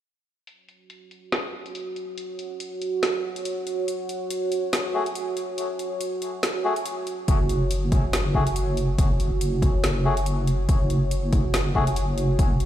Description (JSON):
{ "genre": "deep dubstep", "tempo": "141 BPM", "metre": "4/4", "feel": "swing 56% on 16ths, half-time", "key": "unclear", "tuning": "A4 = 439 Hz", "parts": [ { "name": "dark analog pad", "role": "sustained chords", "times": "1.5-12.7 s", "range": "F#4 to C#5", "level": "-29 LUFS", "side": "right 3 dB", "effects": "chorus" }, { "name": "deep house drum kit", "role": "drums", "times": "0.5-12.7 s", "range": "hi-hat, snare drum", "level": "-30 LUFS", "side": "equal", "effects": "low-pass filter on hats, low-pass filter on snare, low-pass filter on room" }, { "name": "melodica", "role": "stabs", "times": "4.9-11.8 s", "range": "A3 to G#4", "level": "-30 LUFS", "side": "left 3 dB", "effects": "dub echo" }, { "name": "deep soft wobble bass", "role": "bass", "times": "7.3-12.7 s", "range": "F#1", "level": "-24 LUFS", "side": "equal", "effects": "chorus" }, { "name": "electronic kick drum", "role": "drums", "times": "7.3-12.5 s", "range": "none", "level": "-22 LUFS", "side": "equal", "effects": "none" } ], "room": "light reverb", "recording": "played on a big sound system in a bare room, stone room reverb", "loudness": "-22 LUFS", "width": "side -12 dB against mid", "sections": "0.5-7.3 A section; 7.3-12.7 B section", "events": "none", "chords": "0.5 F#5", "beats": "| 0.47 0.90 1.32 1.75 | 2.18 2.60 3.03 3.45 | 3.88 4.30 4.73 5.16 | 5.58 6.01 6.43 6.86 | 7.28 7.71 8.13 8.56 | 8.98 9.41 9.84 10.26 | 10.69 11.11 11.54 11.96 | 12.39" }